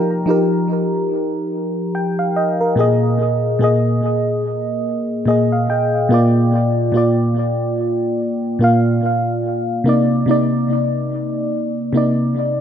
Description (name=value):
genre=R&B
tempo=72 BPM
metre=4/4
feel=swing 58% on 16ths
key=unclear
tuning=A4 = 443 Hz
part: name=mellow FM electric piano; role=solo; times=0.0-12.6 s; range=Bb2 to Bb5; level=-15 LUFS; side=equal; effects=chorus, tape echo
room=moderate spring reverb, RT60 1.1 s, digital ambience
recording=echo-heavy mix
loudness=-15 LUFS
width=side -9 dB against mid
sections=0.0-12.6 A section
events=FM electric piano fill 4.9-6.5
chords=0.0 F9sus4; 2.8 Bb7sus4; 6.1 Bb6; 9.9 Cm9